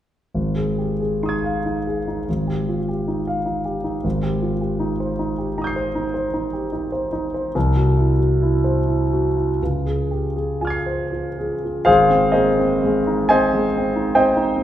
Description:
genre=classical, impressionist solo piano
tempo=38-54 BPM (dotted quarters)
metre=9/8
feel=rubato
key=Ab major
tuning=A4 = 443 Hz
part: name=clear concert grand piano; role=solo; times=0.3-14.6 s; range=Ab1 to C7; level=-18 LUFS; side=equal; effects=none
room=wet recital hall reverb, RT60 1.5 s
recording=recorded in a church or concert hall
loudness=-18 LUFS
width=side -11 dB against mid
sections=0.3-11.9 A section; 11.9-14.6 B section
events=none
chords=0.3 Ab6; 2.3 Fm9/Ab; 4.0 Abmaj9; 7.5 C; 9.6 Dbmaj7; 11.9 Abmaj7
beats=| 0.34 1.65 2.88 | 4.05 5.18 6.32 | 7.55 8.87 10.34 | 11.87 13.32 14.58

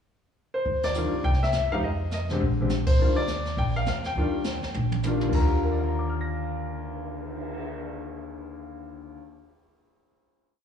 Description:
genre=jazz piano trio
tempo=205 BPM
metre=4/4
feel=swing 61% on 8ths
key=Eb major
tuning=A4 = 440 Hz
part: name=clear concert grand piano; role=melody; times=0.5-9.4 s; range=Eb2 to Bb6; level=-28 LUFS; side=left 2 dB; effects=slapback echo
part: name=upright bass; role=bass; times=0.7-9.1 s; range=Bb1 to Bb2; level=-28 LUFS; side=equal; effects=none
part: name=jazz brush drum kit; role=drums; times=0.7-7.6 s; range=brushed snare drum, crash cymbal, cymbal swell, hi-hat, kick drum, ride cymbal, snare drum, toms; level=-31 LUFS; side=equal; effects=none
room=light reverb, studio reverb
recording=live gig heard through the venue's PA, club reverb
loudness=-24 LUFS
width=side -8 dB against mid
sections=0.0-0.7 pickup bar; 0.7-5.3 A section; 5.3-7.7 final chord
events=band accent 0.8, 2.9; drum fill 4.7-5.3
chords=0.0 N.C.; 0.7 Ebmaj9; 1.2 C; 1.8 F7(no3); 2.4 Bbsus2; 3.0 Ebmaj9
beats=0.07 0.36 | 0.66 0.95 1.24 1.54 | 1.83 2.12 2.41 2.71 | 3.00 3.29 3.58 3.87 | 4.16 4.45 4.75 5.04 | 5.33 5.62 5.92 6.21 | 6.50 6.79 7.09 7.38

